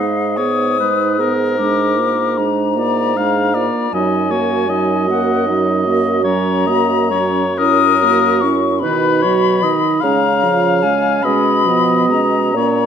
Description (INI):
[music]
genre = classical, slow romantic movement for wind quintet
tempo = 42-53 BPM (dotted quarters)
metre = 6/8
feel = rubato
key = Eb minor, F# major from 6.2 s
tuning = A4 = 444 Hz
[part]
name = silver concert flute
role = melody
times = 0.0-12.9 s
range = F5 to Eb6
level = -18 LUFS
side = left 10 dB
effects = none
[part]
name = warm oboe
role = second line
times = 0.0-12.9 s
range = Bb4 to E#5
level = -20 LUFS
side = left 3 dB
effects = none
[part]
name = clear clarinet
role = accompaniment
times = 0.0-12.9 s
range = B3 to Ab4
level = -21 LUFS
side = right 9 dB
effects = none
[part]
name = mellow French horn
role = accompaniment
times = 0.0-12.9 s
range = D#3 to C#4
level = -21 LUFS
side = right 1 dB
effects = none
[part]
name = mellow bassoon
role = bass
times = 0.0-12.9 s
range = Gb2 to C#3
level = -19 LUFS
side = right 3 dB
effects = none
[sound]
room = moderate recital hall reverb, RT60 1.8 s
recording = nothing above 10.8 kHz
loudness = -13 LUFS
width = side -8 dB against mid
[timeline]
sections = 0.0-12.9 A section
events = none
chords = 0.0 Abm; 1.6 Bb7/Ab; 3.9 Ebm/Gb; 6.2 F#; 7.6 F#7; 8.8 B; 10.0 C#; 11.2 C#7/B